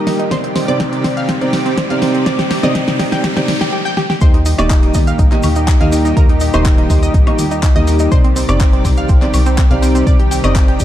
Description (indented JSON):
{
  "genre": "progressive house",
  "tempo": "123 BPM",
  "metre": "4/4",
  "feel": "straight",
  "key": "Eb major",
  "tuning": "A4 = 439 Hz",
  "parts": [
    { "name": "lush unison pad", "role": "sustained chords", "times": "0.0-10.8 s", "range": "Bb2 to D5", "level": "-22 LUFS", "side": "left 1 dB", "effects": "chorus, sidechain pumping" },
    { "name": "analog pluck", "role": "arpeggios", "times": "0.0-10.8 s", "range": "C4 to G5", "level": "-21 LUFS", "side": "right 1 dB", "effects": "chorus, sidechain pumping, tape echo" },
    { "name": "felt-muted upright piano", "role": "stabs", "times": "0.0-10.8 s", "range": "C3 to Eb5", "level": "-18 LUFS", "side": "right 1 dB", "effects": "sidechain pumping, low-pass filter, tape echo" },
    { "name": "riser", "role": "sound effects", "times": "0.0-3.7 s", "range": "none", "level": "-26 LUFS", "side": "equal", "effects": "none" },
    { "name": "deep house drum kit", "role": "drums", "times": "0.1-10.8 s", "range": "handclaps, hi-hat, snare drum, woodblock", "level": "-21 LUFS", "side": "equal", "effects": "sidechain pumping on hats, sidechain pumping on perc" },
    { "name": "electronic kick drum", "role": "drums", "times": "0.3-10.8 s", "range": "none", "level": "-12 LUFS", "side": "equal", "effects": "high-pass filter on kick, high-pass filter on room" },
    { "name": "plucky analog bass", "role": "bass", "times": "4.2-10.8 s", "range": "Eb1 to Eb2", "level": "-16 LUFS", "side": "equal", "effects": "sidechain pumping" },
    { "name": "maracas", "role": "percussion", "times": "4.2-10.8 s", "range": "none", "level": "-30 LUFS", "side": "right 1 dB", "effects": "none" }
  ],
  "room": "light reverb",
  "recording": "dark, warm production",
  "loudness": "-11 LUFS",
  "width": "side -12 dB against mid",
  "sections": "0.0-4.2 A section; 4.2-10.8 B section",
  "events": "build-up 0.0-4.2; drum fill 0.0-3.7, 4.0; riser 0.0-3.7; drop 4.2-10.8",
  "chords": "0.3 Cmadd9; 4.2 Eb; 8.1 Cmadd9"
}